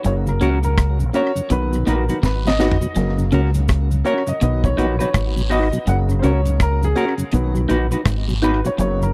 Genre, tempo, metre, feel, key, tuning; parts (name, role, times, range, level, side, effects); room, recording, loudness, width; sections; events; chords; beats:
roots reggae; 82 BPM; 4/4; swing 61% on 16ths; A4 = 440 Hz
clean electric guitar; riff; 0.0-9.0 s; F#2 to C#3; -27 LUFS; equal; phaser
warm upright piano; stabs; 0.0-9.1 s; C#3 to F#5; -26 LUFS; equal
deep reggae drum kit; drums; 0.0-9.0 s; hi-hat, kick drum, rim click, snare drum, toms; -24 LUFS; equal; tape echo
cabasa and guiro; percussion; 0.0-9.1 s; -38 LUFS; equal
deep dub fingered electric bass; bass; 0.1-9.1 s; F#1 to C#2; -22 LUFS; equal
mellow tonewheel organ; accompaniment; 0.3-9.1 s; F#2 to F#4; -27 LUFS; equal; slow rotary speaker, tape echo
semi-hollow electric guitar; accompaniment; 0.4-8.7 s; C#4 to B4; -27 LUFS; equal; spring reverb, tape echo
little or no reverb; dry, close 1970s-style studio recording; -19 LUFS; mono
0.0-9.1 A section
upright piano solo 0.0-9.1; drum fill 2.2-3.0
0.0 F#; 1.5 B; 3.0 F#; 4.4 B; 5.9 F#; 7.3 B
| 0.04 0.77 1.50 2.23 | 2.96 3.69 4.42 5.15 | 5.88 6.60 7.33 8.06 | 8.79